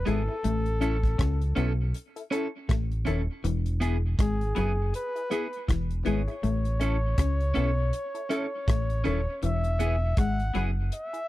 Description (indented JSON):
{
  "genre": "roots reggae",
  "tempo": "80 BPM",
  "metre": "4/4",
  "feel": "swing 59% on 16ths",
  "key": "unclear",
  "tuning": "A4 = 441 Hz",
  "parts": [
    { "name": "warm flugelhorn", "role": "melody", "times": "0.0-11.3 s", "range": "G#4 to F#5", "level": "-33 LUFS", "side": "left 1 dB", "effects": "tape echo" },
    { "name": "deep dub fingered electric bass", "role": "bass", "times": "0.0-10.9 s", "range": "D#1 to C#2", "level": "-27 LUFS", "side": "equal", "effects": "none" },
    { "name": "electric guitar at the edge of break-up", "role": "accompaniment", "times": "0.1-10.7 s", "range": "B3 to A4", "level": "-34 LUFS", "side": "right 4 dB", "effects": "tape echo" },
    { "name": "electric guitar through a small old amp", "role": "riff", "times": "0.1-10.8 s", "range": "D#3 to C#4", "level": "-32 LUFS", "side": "left 5 dB", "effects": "none" },
    { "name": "filtered dub chord stab", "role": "stabs", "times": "0.1-11.2 s", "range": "B3 to A4", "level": "-34 LUFS", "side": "left 6 dB", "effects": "phaser" },
    { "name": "damped 70s drum kit", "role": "drums", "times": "0.1-11.3 s", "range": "hi-hat, kick drum, rim click", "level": "-27 LUFS", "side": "equal", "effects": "none" }
  ],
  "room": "little or no reverb",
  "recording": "dry, close 1970s-style studio recording",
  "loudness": "-25 LUFS",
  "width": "side -16 dB against mid",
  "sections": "0.0-11.3 A section",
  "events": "none",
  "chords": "0.4 A; 3.4 E; 6.4 A; 9.4 E",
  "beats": "| 0.44 1.19 1.94 2.69 | 3.44 4.19 4.94 5.68 | 6.43 7.18 7.93 8.68 | 9.43 10.17 10.92"
}